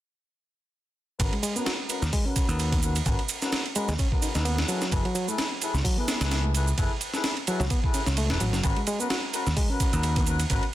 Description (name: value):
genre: breakbeat, breaks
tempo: 129 BPM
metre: 4/4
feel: swing 56% on 16ths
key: unclear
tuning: A4 = 435 Hz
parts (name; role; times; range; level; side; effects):
- warm brass ensemble; stabs; 1.2-10.6 s; C#4 to B4; -33 LUFS; left 3 dB; vintage 12-bit sampler grit, low-pass filter, ping-pong delay
- picked electric bass; bass; 1.2-10.6 s; E1 to D#2; -26 LUFS; equal; none
- breakbeat sampler-style drum kit; drums; 1.2-10.7 s; hi-hat, kick drum, ride cymbal, snare drum; -27 LUFS; equal; studio reverb
- shaker; drums; 1.2-10.6 s; none; -34 LUFS; right 7 dB; studio reverb
- reed electric piano; riff; 1.3-10.2 s; F#3 to F#4; -32 LUFS; equal; vintage 12-bit sampler grit, ping-pong delay
room: light reverb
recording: dense, heavily limited modern master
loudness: -24 LUFS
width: side -14 dB against mid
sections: 1.2-10.7 A section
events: filter sweep on brass ensemble 1.2-10.7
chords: 1.2 G#m11; 4.7 F#m11; 8.6 G#m11